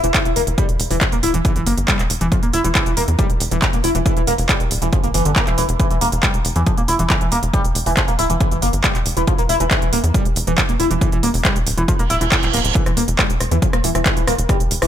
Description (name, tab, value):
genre	driving peak-time techno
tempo	138 BPM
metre	4/4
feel	straight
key	E locrian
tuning	A4 = 444 Hz
part	overdriven synth lead	riff	0.0-14.9 s	D3 to E4	-20 LUFS	equal	distortion, phaser, tube saturation, cassette tape, sidechain pumping, dub echo
part	tight sequencer bass	bass	0.0-14.9 s	D1 to E2	-21 LUFS	equal	sidechain pumping
part	techno drum kit	drums	0.0-14.9 s	handclaps, hi-hat, rim click	-21 LUFS	right 1 dB	none
part	electronic kick drum	drums	0.1-14.6 s	none	-19 LUFS	equal	none
part	reverse cymbal	sound effects	12.1-12.8 s	none	-24 LUFS	right 8 dB	none
room	little or no reverb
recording	none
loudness	-15 LUFS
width	side -10 dB against mid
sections	0.0-14.9 A section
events	reverse cymbal 12.1-12.8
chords	none